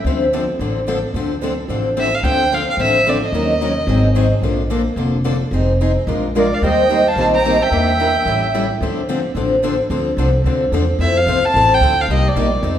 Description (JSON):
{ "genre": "acoustic string swing (jazz manouche)", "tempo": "219 BPM", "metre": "4/4", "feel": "swing 58% on 8ths", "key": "D minor", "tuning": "A4 = 440 Hz", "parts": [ { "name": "upright bass", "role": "bass", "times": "0.0-12.8 s", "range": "F1 to F2", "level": "-20 LUFS", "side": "equal", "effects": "none" }, { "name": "picked acoustic archtop guitar", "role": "accompaniment", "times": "0.1-12.8 s", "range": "C3 to C5", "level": "-23 LUFS", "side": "right 4 dB", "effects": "none" }, { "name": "picked steel-string acoustic guitar", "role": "accompaniment", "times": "0.1-12.8 s", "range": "C3 to C5", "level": "-19 LUFS", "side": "left 4 dB", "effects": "none" }, { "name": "warm violin", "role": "melody", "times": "2.0-4.3, 6.4-8.7, 11.0-12.8 s", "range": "D5 to Bb5", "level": "-18 LUFS", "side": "right 1 dB", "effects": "none" }, { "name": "musette accordion", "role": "second line", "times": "6.4-8.7 s", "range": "Bb4 to G5", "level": "-22 LUFS", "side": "right 4 dB", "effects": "none" } ], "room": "wet recital hall reverb, RT60 1.6 s", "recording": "recorded in a church or concert hall", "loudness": "-14 LUFS", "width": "side -10 dB against mid", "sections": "0.0-2.2 A section; 2.2-11.0 A section; 11.0-12.8 B section", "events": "none", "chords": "0.1 Dm7; 3.3 Ebm7; 3.9 G#7; 4.4 Bbmaj7; 5.5 Fm7; 6.1 Bb7; 6.6 Eb6; 7.7 Em7b5; 8.3 A7; 8.8 Dm7; 11.0 Fmaj7; 12.1 Cm9" }